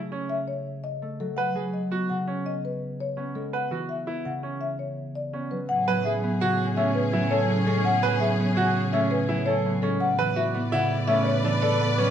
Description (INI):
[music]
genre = classical, minimalist pattern music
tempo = 167 BPM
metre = 6/4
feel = straight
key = A major from 5.7 s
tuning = A4 = 441 Hz
[part]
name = concert harp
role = accompaniment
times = 0.0-12.1 s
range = C#3 to B3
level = -28 LUFS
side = equal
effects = none
[part]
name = clear grand piano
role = arpeggios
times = 0.1-12.1 s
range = C#4 to B4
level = -29 LUFS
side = right 6 dB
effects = none
[part]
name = marimba with soft mallets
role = melody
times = 0.3-12.1 s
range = A4 to F#5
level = -28 LUFS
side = left 4 dB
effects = none
[part]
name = rich symphonic string section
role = sustained chords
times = 5.7-12.1 s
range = C#4 to D5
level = -31 LUFS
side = left 1 dB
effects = none
[part]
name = warm double bass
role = bass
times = 5.7-12.1 s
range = A2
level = -29 LUFS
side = right 3 dB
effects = none
[sound]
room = moderate recital hall reverb, RT60 1.5 s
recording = none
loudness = -23 LUFS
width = side -9 dB against mid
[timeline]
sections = 0.0-5.7 A section; 5.7-12.1 B section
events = none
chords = 0.0 F#madd9; 1.4 B9; 3.5 E69; 5.7 Amaj9; 10.0 Bm9/A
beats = 0.30 0.66 1.02 | 1.38 1.74 2.10 2.46 2.81 3.17 | 3.53 3.89 4.25 4.61 4.97 5.33 | 5.69 6.05 6.41 6.77 7.13 7.49 | 7.84 8.20 8.56 8.92 9.28 9.64 | 10.00 10.36 10.72 11.08 11.44 11.80